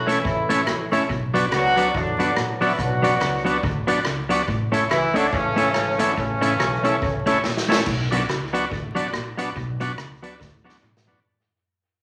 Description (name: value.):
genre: ska.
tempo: 142 BPM.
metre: 4/4.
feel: swing 60% on 8ths.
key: B minor.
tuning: A4 = 440 Hz.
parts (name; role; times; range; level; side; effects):
mellow horn section; melody; 0.0-7.4 s; C#3 to F#4; -25 LUFS; equal; none.
upright bass; bass; 0.0-11.2 s; G#1 to E2; -34 LUFS; equal; none.
clean electric guitar; accompaniment; 0.1-11.2 s; F#3 to A4; -29 LUFS; equal; none.
overdriven tonewheel organ; stabs; 0.1-11.2 s; C#4 to D5; -27 LUFS; equal; slow rotary speaker.
street-band drum kit; drums; 0.1-11.2 s; crash cymbal, hi-hat, kick drum, rim click, snare drum, toms; -30 LUFS; equal; dub echo.
clean electric guitar; riff; 0.2-11.0 s; G#2 to E3; -35 LUFS; equal; none.
group handclap; percussion; 0.7-10.9 s; none; -42 LUFS; equal; none.
room: wet large studio reverb, RT60 0.9 s.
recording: vinyl crackle.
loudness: -22 LUFS.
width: mono.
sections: 0.0-7.9 A section; 7.9-11.3 B section.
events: drum fill 7.4-7.9, 10.4-11.3; fade-out 7.9-11.3.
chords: 0.0 A; 1.1 Bm; 4.5 A; 7.9 Bm.